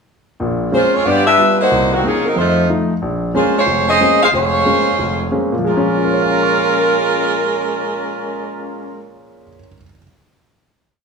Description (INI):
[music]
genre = jazz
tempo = 183 BPM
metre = 4/4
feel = swing 64% on 8ths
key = Bb minor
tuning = A4 = 440 Hz
[part]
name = clear grand piano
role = accompaniment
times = 0.4-10.0 s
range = F1 to F6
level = -18 LUFS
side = equal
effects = none
[part]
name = warm saxophone section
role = melody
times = 0.7-9.0 s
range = Eb3 to F5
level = -14 LUFS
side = right 1 dB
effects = none
[sound]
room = moderate large studio reverb, RT60 1.1 s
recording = studio reverb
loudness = -13 LUFS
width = side -5 dB against mid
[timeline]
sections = 0.4-5.6 A section; 5.6-8.3 final chord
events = none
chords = 0.4 Bbm9; 1.0 G7; 1.7 Cm7b5; 2.4 F7; 3.0 Bbm9; 5.6 Bbm7